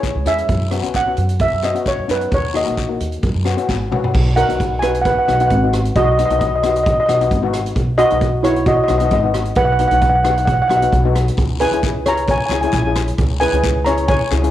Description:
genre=calypso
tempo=133 BPM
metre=4/4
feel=swing 53% on 16ths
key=B major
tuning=A4 = 440 Hz
part: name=steel pan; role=melody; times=0.0-14.5 s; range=E4 to A#5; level=-17 LUFS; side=right 1 dB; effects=cassette tape
part: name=steel pan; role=accompaniment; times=0.0-14.5 s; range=A#3 to G#4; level=-22 LUFS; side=left 7 dB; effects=cassette tape
part: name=swinging big-band drum kit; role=drums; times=0.0-14.5 s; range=crash cymbal, hi-hat, kick drum, rim click, snare drum, toms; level=-22 LUFS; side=right 1 dB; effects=cassette tape
part: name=guiro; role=percussion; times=0.0-3.8, 11.4-14.4 s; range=none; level=-31 LUFS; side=left 8 dB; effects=none
part: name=upright bass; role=bass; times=0.2-14.5 s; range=G#1 to F#2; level=-20 LUFS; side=equal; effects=none
room=moderate digital room reverb, RT60 1.1 s, small room ambience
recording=home recording on cassette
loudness=-14 LUFS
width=side -12 dB against mid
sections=0.0-4.1 A section; 4.1-14.5 B section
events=drum fill 3.7-4.1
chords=0.5 F#7sus4; 2.3 D#m; 3.2 F#sus4; 4.1 B; 11.4 C#m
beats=0.04 | 0.49 0.95 1.41 1.86 | 2.32 2.77 3.23 3.69 | 4.14 4.59 5.05 5.50 | 5.96 6.41 6.86 7.31 | 7.77 8.22 8.67 9.12 | 9.57 10.03 10.48 10.93 | 11.38 11.84 12.29 12.74 | 13.19 13.64 14.10

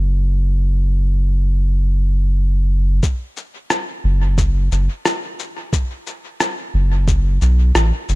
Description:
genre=ambient dub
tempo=89 BPM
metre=4/4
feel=swing 56% on 16ths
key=F# minor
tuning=A4 = 440 Hz
part: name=soft dub sub bass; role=bass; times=0.0-8.2 s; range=F#1 to B1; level=-15 LUFS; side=equal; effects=none
part: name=electronic cabasa and rim click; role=drums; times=3.0-8.2 s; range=none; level=-22 LUFS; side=left 1 dB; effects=dub echo
part: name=electronic kick drum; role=drums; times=3.0-7.2 s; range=none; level=-18 LUFS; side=equal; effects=none
room=little or no reverb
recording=none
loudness=-15 LUFS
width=side -20 dB against mid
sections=0.0-3.0 A section; 3.0-8.2 B section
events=none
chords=none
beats=| 0.33 1.01 1.68 2.36 | 3.03 3.71 4.38 5.05 | 5.73 6.40 7.08 7.75

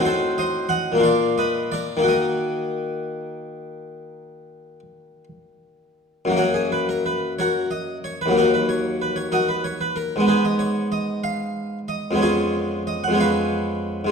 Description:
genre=classical, baroque-style suite movement for harpsichord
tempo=54-63 BPM (dotted quarters)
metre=12/8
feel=rubato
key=Eb minor, F# major from 6.3 s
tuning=A4 = 440 Hz
part: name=harpsichord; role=solo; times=0.0-14.1 s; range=D#2 to F#5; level=-20 LUFS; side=left 1 dB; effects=none
room=wet recital hall reverb, RT60 1.5 s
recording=dark, warm production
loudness=-20 LUFS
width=side -6 dB against mid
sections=0.0-6.3 A section; 6.3-14.1 A section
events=none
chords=0.0 Adim7; 1.0 Bb; 2.0 Ebm; 6.3 F#; 10.3 G#m; 12.2 C#7/E#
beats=0.01 1.00 | 2.05 3.13 4.19 5.26 | 6.34 7.34 8.31 9.29 | 10.26 11.23 12.20 13.16

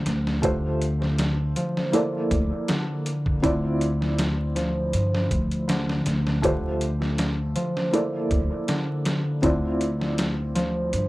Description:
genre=trip hop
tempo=80 BPM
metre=4/4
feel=swing 54% on 16ths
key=D minor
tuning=A4 = 440 Hz
part: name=felt-muted upright piano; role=accompaniment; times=0.0-11.1 s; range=A3 to D5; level=-27 LUFS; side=equal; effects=tremolo, vintage 12-bit sampler grit, tape echo
part: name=concert harp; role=arpeggios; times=0.0-11.1 s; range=D3 to F3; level=-27 LUFS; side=equal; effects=tape echo
part: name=upright bass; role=bass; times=0.0-11.1 s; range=D2 to G2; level=-27 LUFS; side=equal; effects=none
part: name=trip hop sampler-style drum kit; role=drums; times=0.1-11.1 s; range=hi-hat, kick drum, snare drum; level=-28 LUFS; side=equal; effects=none
room=small room ambience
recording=dry, gritty hardware recording, vinyl crackle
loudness=-22 LUFS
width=side -18 dB against mid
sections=0.0-11.1 A section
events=none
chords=0.4 G9sus4/D; 1.9 Bbmaj7#11/D; 3.4 Dm9; 6.4 G9sus4/D; 7.9 Bbmaj7#11/D; 9.4 Dm9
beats=| 0.43 1.19 1.94 2.69 | 3.44 4.18 4.93 5.68 | 6.43 7.18 7.93 8.69 | 9.44 10.19 10.94

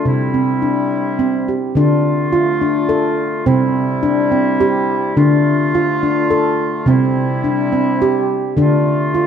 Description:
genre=world meditative, meditative tuned percussion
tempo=106 BPM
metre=3/4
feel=swing 54% on 16ths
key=D minor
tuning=A4 = 440 Hz
part: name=mellow woodwind section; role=sustained chords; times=0.0-9.3 s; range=C3 to F4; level=-20 LUFS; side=right 1 dB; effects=none
part: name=handpan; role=arpeggios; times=0.0-9.3 s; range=C3 to A4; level=-14 LUFS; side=equal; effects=none
room=wet echo chamber reverb, RT60 2.2 s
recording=none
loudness=-13 LUFS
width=side -8 dB against mid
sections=0.0-1.8 A section; 1.8-9.3 B section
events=none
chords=0.1 C; 1.8 Dm; 3.5 C; 5.2 Dm; 6.9 C; 8.6 Dm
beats=| 0.05 0.62 1.19 | 1.75 2.32 2.89 | 3.46 4.03 4.59 | 5.16 5.73 6.29 | 6.86 7.43 8.00 | 8.57 9.13

